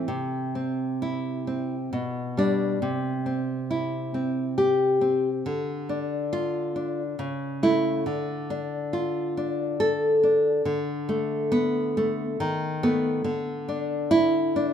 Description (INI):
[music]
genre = romantic piece for solo classical guitar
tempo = 69 BPM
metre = 3/4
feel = rubato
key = C major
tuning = A4 = 440 Hz
[part]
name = nylon-string guitar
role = solo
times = 0.0-14.7 s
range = B2 to A4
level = -23 LUFS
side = equal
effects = none
[sound]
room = light reverb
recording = minimal, uncompressed stereo recording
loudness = -23 LUFS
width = side -8 dB against mid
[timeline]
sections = 0.1-14.7 A section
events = none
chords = 0.1 C; 1.9 G/B; 2.8 C; 5.5 Dm; 7.2 A/C#; 8.1 Dm; 10.7 Bm7/D; 12.4 B7/D#; 13.2 Dsus2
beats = | 0.09 1.03 1.93 | 2.82 3.70 4.58 | 5.46 6.32 7.19 | 8.07 8.94 9.80 | 10.65 11.52 12.40 | 13.25 14.11